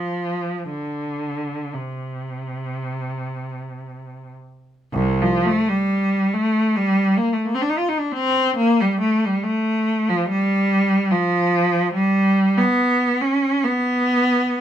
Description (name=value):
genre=classical, free, expressive piece for unaccompanied cello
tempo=44-74 BPM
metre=4/4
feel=rubato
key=unclear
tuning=A4 = 440 Hz
part: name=rich cello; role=solo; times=0.0-14.6 s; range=C2 to F4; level=-18 LUFS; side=equal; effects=none
room=light reverb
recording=none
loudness=-18 LUFS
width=side -10 dB against mid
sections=0.0-4.9 A section; 4.9-14.6 A section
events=none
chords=none